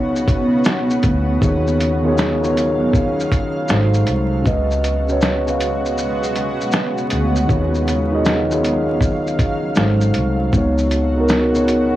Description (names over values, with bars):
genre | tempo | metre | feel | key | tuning
lo-fi hip hop | 79 BPM | 4/4 | swing 66% on 16ths | unclear | A4 = 441 Hz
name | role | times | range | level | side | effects
mellow tine electric piano | accompaniment | 0.0-12.0 s | Db3 to F5 | -19 LUFS | equal | medium stereo tremolo
granular cloud pad | sustained chords | 0.0-12.0 s | Db3 to F5 | -22 LUFS | right 1 dB | built-in reverb
vintage muted fingered electric bass | bass | 0.0-12.0 s | Ab1 to Eb2 | -21 LUFS | equal | transformer saturation
lo-fi sampler-style drum kit | drums | 0.2-11.9 s | hi-hat, kick drum, shaker, snare drum | -20 LUFS | equal | none
room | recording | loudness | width
light reverb | dry, gritty hardware recording, transformer saturation, vinyl crackle, small room ambience | -15 LUFS | side -14 dB against mid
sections
0.0-12.0 A section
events
kick muted 6.0-7.5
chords
0.0 Db7sus4; 1.4 Ebm11; 3.7 Ab7b9; 4.5 Db7sus4; 7.5 Ebm11; 9.8 Ab7b9; 10.5 Db7sus4